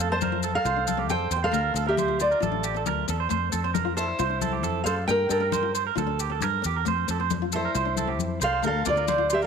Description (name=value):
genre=highlife guitar band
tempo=135 BPM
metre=4/4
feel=straight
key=F major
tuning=A4 = 440 Hz
part: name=fingerpicked steel-string acoustic guitar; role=melody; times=0.0-9.5 s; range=E4 to A5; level=-26 LUFS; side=equal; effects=tape echo
part: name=nylon-string guitar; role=accompaniment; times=0.0-9.4 s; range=A3 to F4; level=-35 LUFS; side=left 13 dB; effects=none
part: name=electric guitar through a small old amp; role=arpeggios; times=0.0-9.5 s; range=G4 to D5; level=-28 LUFS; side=right 12 dB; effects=tape echo
part: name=fingered electric bass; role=bass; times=0.0-9.4 s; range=A1 to G2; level=-30 LUFS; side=left 1 dB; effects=none
part: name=congas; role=percussion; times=0.0-9.2 s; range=none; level=-33 LUFS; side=left 14 dB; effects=none
part: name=maracas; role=percussion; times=0.0-9.5 s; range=none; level=-35 LUFS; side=left 15 dB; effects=none
room=light reverb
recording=1960s-style stereo with parts hard left and right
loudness=-23 LUFS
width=side -6 dB against mid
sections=0.0-9.5 A section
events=none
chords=0.0 F; 1.5 Dm; 3.3 F; 5.1 Gm7; 6.9 F; 8.6 Dm